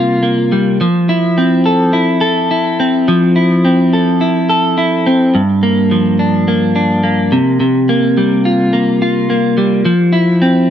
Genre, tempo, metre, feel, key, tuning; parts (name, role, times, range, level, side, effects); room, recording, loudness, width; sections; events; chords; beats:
indie pop; 106 BPM; 4/4; swing 55% on 16ths; F major; A4 = 440 Hz
clean electric guitar; solo; 0.0-10.7 s; G2 to A4; -10 LUFS; equal; wide subtle chorus, vibrato effect
light reverb; dry, close 1970s-style studio recording; -10 LUFS; side -9 dB against mid
0.0-5.3 A section; 5.3-10.7 A section
0.0 C7sus4; 0.8 Fmaj7; 5.3 Gm7; 7.3 C7sus4; 9.9 Fmaj7(no3)
0.24 | 0.81 1.37 1.94 2.50 | 3.07 3.64 4.20 4.77 | 5.33 5.90 6.47 7.03 | 7.60 8.16 8.73 9.30 | 9.86 10.43